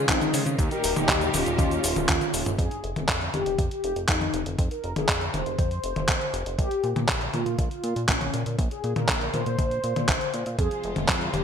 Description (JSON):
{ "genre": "italo disco", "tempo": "120 BPM", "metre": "4/4", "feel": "straight", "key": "F minor", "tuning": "A4 = 441 Hz", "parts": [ { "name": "mellow synth brass", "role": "melody", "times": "0.0-11.4 s", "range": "C4 to C5", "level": "-29 LUFS", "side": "left 1 dB", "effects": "chorus, digital delay" }, { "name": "warm studio string section", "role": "sustained chords", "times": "0.0-2.6, 10.6-11.4 s", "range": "Bb2 to C5", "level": "-31 LUFS", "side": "right 1 dB", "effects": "none" }, { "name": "chorused synth bass", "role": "bass", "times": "0.0-11.4 s", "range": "Eb1 to Db3", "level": "-30 LUFS", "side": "equal", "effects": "tube saturation" }, { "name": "clean 12-bit digital drum machine", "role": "drums", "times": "0.1-11.4 s", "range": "cabasa, handclaps, hi-hat, toms", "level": "-26 LUFS", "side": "left 1 dB", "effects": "gated reverb" }, { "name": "electronic kick drum", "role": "drums", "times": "0.1-11.2 s", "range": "none", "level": "-26 LUFS", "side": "equal", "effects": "none" } ], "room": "moderate lush hall reverb, RT60 1.6 s", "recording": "bright 1980s-style digital production", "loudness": "-23 LUFS", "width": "side -7 dB against mid", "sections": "0.0-2.6 A section; 2.6-11.4 B section", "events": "drum fill 2.1-2.6", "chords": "0.0 Dbadd9; 0.6 Eb; 2.6 F5; 6.6 Bbsus2; 10.6 Fm", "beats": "0.09 | 0.59 1.09 1.59 2.09 | 2.59 3.09 3.59 4.09 | 4.59 5.09 5.59 6.09 | 6.59 7.09 7.59 8.09 | 8.59 9.09 9.59 10.09 | 10.59 11.09" }